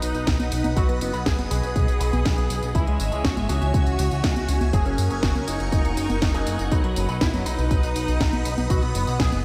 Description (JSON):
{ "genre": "italo disco", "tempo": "121 BPM", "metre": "4/4", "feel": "straight", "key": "B major", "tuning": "A4 = 440 Hz", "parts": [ { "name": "unison lead", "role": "melody", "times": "0.0-9.4 s", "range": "F#3 to G#4", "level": "-31 LUFS", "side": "equal", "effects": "subtle chorus, delay" }, { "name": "phased string machine", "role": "sustained chords", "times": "0.0-9.4 s", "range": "A#4 to E6", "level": "-34 LUFS", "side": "equal", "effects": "ensemble chorus, phaser" }, { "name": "electric guitar with an envelope filter", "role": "stabs", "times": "0.0-9.4 s", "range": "E3 to B4", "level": "-36 LUFS", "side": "equal", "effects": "none" }, { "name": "chorused synth bass", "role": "bass", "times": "0.0-9.4 s", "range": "E1 to F#2", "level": "-27 LUFS", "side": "equal", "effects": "tube saturation" }, { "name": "house drum kit", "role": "drums", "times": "0.0-9.4 s", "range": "congas, hi-hat, snare drum, tambourine", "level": "-31 LUFS", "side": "equal", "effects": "small room reverb" }, { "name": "sub drop", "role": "sound effects", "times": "0.0-0.8 s", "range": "none", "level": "barely audible", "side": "none", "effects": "none" }, { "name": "electronic kick drum", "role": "drums", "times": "0.3-9.3 s", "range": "none", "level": "-25 LUFS", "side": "equal", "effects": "small room reverb" } ], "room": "moderate lush hall reverb, RT60 2.0 s, digital ambience", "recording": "dreamy mix soaked in reverb", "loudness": "-23 LUFS", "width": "mono", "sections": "0.0-9.4 A section", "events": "impact 0.0-0.8", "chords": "0.0 B; 2.8 C#m; 4.7 F#add9; 6.7 B" }